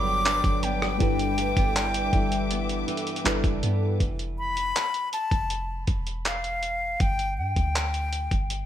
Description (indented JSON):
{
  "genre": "contemporary R&B",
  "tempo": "80 BPM",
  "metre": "4/4",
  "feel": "straight",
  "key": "G major",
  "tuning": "A4 = 440 Hz",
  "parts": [
    { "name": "breathy silver concert flute", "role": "melody", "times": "0.0-8.7 s", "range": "F5 to D6", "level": "-28 LUFS", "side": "left 1 dB", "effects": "digital delay" },
    { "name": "FM electric piano with soft pad layer", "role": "accompaniment", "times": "0.0-4.0 s", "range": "F#3 to B4", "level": "-30 LUFS", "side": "left 4 dB", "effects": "chorus" },
    { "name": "dark studio string section", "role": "sustained chords", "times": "0.0-4.0 s", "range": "B4 to D6", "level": "-36 LUFS", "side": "left 3 dB", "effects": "none" },
    { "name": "flamenco guitar", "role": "arpeggios", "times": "0.0-4.6 s", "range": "G2 to D4", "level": "-33 LUFS", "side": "right 6 dB", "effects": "wide subtle chorus, digital delay" },
    { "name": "soft 808-style bass", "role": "bass", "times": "0.0-8.7 s", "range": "E1 to G2", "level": "-30 LUFS", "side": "equal", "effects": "none" },
    { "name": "dusty soul sampler-style drum kit", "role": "drums", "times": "0.3-8.7 s", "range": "handclaps, hi-hat, kick drum, rim click", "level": "-26 LUFS", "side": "equal", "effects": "none" }
  ],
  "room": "light reverb, small room ambience",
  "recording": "bright 1980s-style digital production",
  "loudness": "-23 LUFS",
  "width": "side -11 dB against mid",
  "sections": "0.0-4.0 A section; 4.0-8.7 B section",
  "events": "none",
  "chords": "0.0 Gmaj7; 1.0 G6; 4.0 Fmaj7; 7.0 G5",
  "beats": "0.25 | 1.00 1.75 2.50 3.25 | 4.00 4.75 5.50 6.25 | 7.00 7.75 8.50"
}